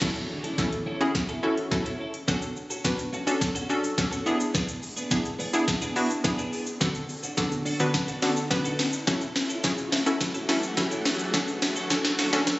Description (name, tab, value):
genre	dance-pop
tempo	106 BPM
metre	4/4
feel	straight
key	F# minor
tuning	A4 = 440 Hz
part	analog pluck	accompaniment	0.0-12.6 s	D3 to B4	-28 LUFS	equal	chorus, sidechain pumping
part	twelve-string electric guitar	riff	0.0-12.5 s	B3 to A4	-35 LUFS	right 1 dB	analog chorus
part	smooth R&B drum kit	drums	0.0-12.6 s	crash cymbal, hi-hat, kick drum, shaker, snare drum	-27 LUFS	equal	none
part	riser and impact	sound effects	0.0-12.6 s	none	-40 LUFS	equal	none
part	shimmering ambient pad	sustained chords	9.8-12.6 s	D2 to F#4	-36 LUFS	equal	chorus, built-in reverb, phaser, sidechain pumping
room	moderate lush hall reverb, RT60 3.2 s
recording	recorded on a phone in the room, studio reverb, compression, high-pass filter, nothing above 7.9 kHz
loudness	-24 LUFS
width	side -20 dB against mid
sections	0.0-12.6 A section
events	build-up 0.0-12.6; drum fill 0.0-12.6; impact 0.0-2.3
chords	0.0 F#m7; 2.3 Dmaj7; 4.3 E7; 6.8 Bm7/D; 9.1 F#m7; 11.3 Dmaj7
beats	| 0.02 0.58 1.15 1.72 | 2.28 2.85 3.41 3.98 | 4.55 5.11 5.68 6.24 | 6.81 7.38 7.94 8.51 | 9.07 9.64 10.21 10.77 | 11.34 11.90 12.47